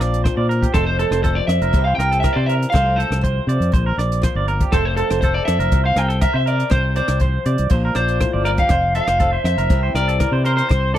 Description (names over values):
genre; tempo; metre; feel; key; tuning
highlife guitar band; 121 BPM; 4/4; straight; F major; A4 = 441 Hz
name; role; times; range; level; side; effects
picked old ladder-braced acoustic guitar; accompaniment; 0.0-11.0 s; F2 to A4; -27 LUFS; left 5 dB; none
clean electric guitar; arpeggios; 0.0-11.0 s; G4 to D5; -25 LUFS; right 4 dB; tremolo, tape echo
fingered electric bass; bass; 0.0-11.0 s; F1 to C3; -20 LUFS; equal; none
compact cocktail drum kit; drums; 0.0-11.0 s; hi-hat, kick drum, rim click; -21 LUFS; equal; none
electric guitar at the edge of break-up; melody; 0.7-11.0 s; A4 to G5; -21 LUFS; equal; spring reverb
room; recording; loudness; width
little or no reverb; dry, close 1970s-style studio recording; -15 LUFS; side -12 dB against mid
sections
0.0-11.0 A section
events
none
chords
0.0 Bbadd9; 0.8 F; 1.7 C; 2.7 F/C; 3.7 Bbadd9; 4.7 F; 5.7 C; 6.7 F5/C; 7.7 Bbadd9; 8.7 F; 9.7 C